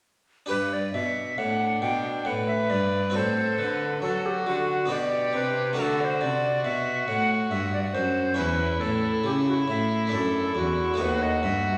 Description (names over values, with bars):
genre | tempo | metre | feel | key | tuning
classical, baroque-style sonata movement with continuo | 69 BPM | 3/4 | straight | G major | A4 = 441 Hz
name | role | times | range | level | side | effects
alto recorder | melody | 0.5-11.8 s | F#4 to G5 | -30 LUFS | equal | none
harpsichord | accompaniment | 0.5-11.8 s | D#2 to B4 | -33 LUFS | equal | none
rich cello | bass | 0.5-11.8 s | D#2 to F#3 | -32 LUFS | equal | none
warm violin | second line | 1.4-11.8 s | D4 to B4 | -32 LUFS | equal | none
room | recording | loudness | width
wet recital hall reverb, RT60 1.4 s | none | -26 LUFS | mono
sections
0.5-11.8 A section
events
none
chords
0.5 G; 3.1 F#dim/A; 4.9 G/B; 5.8 D; 8.4 Aadd9/E; 10.1 D/F#; 11.0 B7/D#